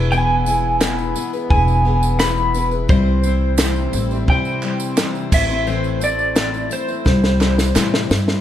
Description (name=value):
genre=indie folk with a building arrangement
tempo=86 BPM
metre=4/4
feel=straight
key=C major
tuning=A4 = 441 Hz
part: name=picked steel-string acoustic guitar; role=accompaniment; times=0.0-8.4 s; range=A2 to C5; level=-23 LUFS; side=left 7 dB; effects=none
part: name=warm brass ensemble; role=sustained chords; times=0.0-8.4 s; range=E3 to C4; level=-30 LUFS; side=right 2 dB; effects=none
part: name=upright bass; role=bass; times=0.0-8.4 s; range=E1 to C3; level=-20 LUFS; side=equal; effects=none
part: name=electric guitar through a small old amp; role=melody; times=0.1-8.1 s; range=C5 to B5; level=-21 LUFS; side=right 1 dB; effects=tremolo
part: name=tambourine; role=percussion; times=0.1-8.4 s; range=none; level=-33 LUFS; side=right 9 dB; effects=none
part: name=compact cocktail drum kit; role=drums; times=0.8-8.4 s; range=crash cymbal, kick drum, snare drum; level=-19 LUFS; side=equal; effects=none
part: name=group handclap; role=percussion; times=0.8-7.9 s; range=none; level=-29 LUFS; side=right 4 dB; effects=none
room=light reverb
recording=none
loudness=-15 LUFS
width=side -11 dB against mid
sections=0.0-8.4 A section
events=drum fill 7.1-8.4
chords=0.0 E; 2.9 C; 5.3 Am; 7.1 C